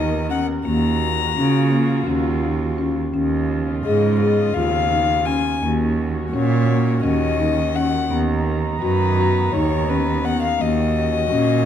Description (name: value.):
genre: contemporary instrumental, chamber music in an uneven meter.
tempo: 169 BPM (eighths).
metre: 7/8.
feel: straight.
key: Eb minor.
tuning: A4 = 440 Hz.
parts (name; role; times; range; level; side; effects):
warm violin; melody; 0.0-11.7 s; B4 to Bb5; -24 LUFS; left 8 dB; none.
warm studio string section; sustained chords; 0.0-11.7 s; Db3 to A#5; -27 LUFS; equal; none.
marimba with soft mallets; arpeggios; 0.0-11.6 s; Bb3 to Ab4; -22 LUFS; left 4 dB; none.
rich cello; bass; 0.0-11.7 s; Eb2 to Db3; -21 LUFS; right 4 dB; none.
room: moderate recital hall reverb, RT60 1.5 s.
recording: dark, warm production.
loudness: -17 LUFS.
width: side -9 dB against mid.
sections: 0.0-11.7 A section.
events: none.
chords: 0.0 Bmaj7/D#; 0.7 Gbmaj7/Eb; 3.1 Db7/Eb; 5.6 Ebm7; 8.1 Bmaj7/D#; 10.6 Ebm7.